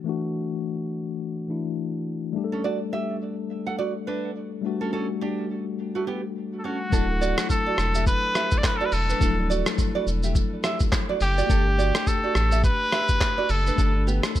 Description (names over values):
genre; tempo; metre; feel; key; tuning
afrobeats; 105 BPM; 4/4; swing 58% on 16ths; D major; A4 = 442 Hz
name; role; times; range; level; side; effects
mellow tine electric piano; accompaniment; 0.0-14.4 s; E3 to A4; -29 LUFS; left 5 dB; auto-pan
nylon-string guitar; riff; 2.5-14.2 s; A3 to F#5; -30 LUFS; right 5 dB; tape echo
clear trumpet; melody; 6.6-14.1 s; F#4 to D5; -26 LUFS; equal; tape echo
sub bass with octave; bass; 6.9-14.2 s; D1 to A1; -24 LUFS; equal; none
lo-fi sampler-style drum kit; drums; 6.9-14.4 s; handclaps, hi-hat, kick drum, rim click, shaker; -25 LUFS; equal; none
room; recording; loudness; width
little or no reverb; none; -22 LUFS; side -13 dB against mid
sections
0.0-6.9 A section; 6.9-14.4 B section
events
none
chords
0.0 Dadd9; 2.4 Gsus2; 6.9 Dadd9; 11.5 Gsus2